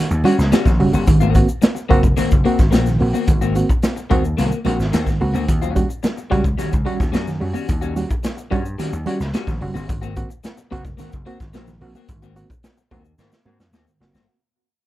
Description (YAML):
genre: funk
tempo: 109 BPM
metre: 4/4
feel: straight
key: unclear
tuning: A4 = 438 Hz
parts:
  - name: reed electric piano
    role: stabs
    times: 0.0-14.1 s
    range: Ab2 to F#4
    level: -22 LUFS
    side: right 3 dB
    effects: harmonic tremolo, tape echo
  - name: vintage slap bass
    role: bass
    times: 0.1-14.3 s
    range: F#1 to Ab2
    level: -21 LUFS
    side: equal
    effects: none
  - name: egg shaker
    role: percussion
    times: 0.1-14.3 s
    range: none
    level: -42 LUFS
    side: left 3 dB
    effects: none
  - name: electric guitar at the edge of break-up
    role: accompaniment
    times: 0.2-14.3 s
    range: G3 to F#4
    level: -26 LUFS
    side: left 8 dB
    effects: wide subtle chorus
  - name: raw garage drum kit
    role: drums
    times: 0.2-14.3 s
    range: hi-hat, kick drum, snare drum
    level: -19 LUFS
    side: equal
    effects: none
  - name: congas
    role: percussion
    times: 0.2-14.3 s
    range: none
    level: -26 LUFS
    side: right 4 dB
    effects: none
room: little or no reverb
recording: none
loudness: -16 LUFS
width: side -15 dB against mid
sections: 0.0-14.3 A section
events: fade-out 2.0-14.3; drum fill 13.2-14.3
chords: 0.0 Eb7#9; 1.1 Ab9; 5.5 Eb7#9; 9.9 Ab9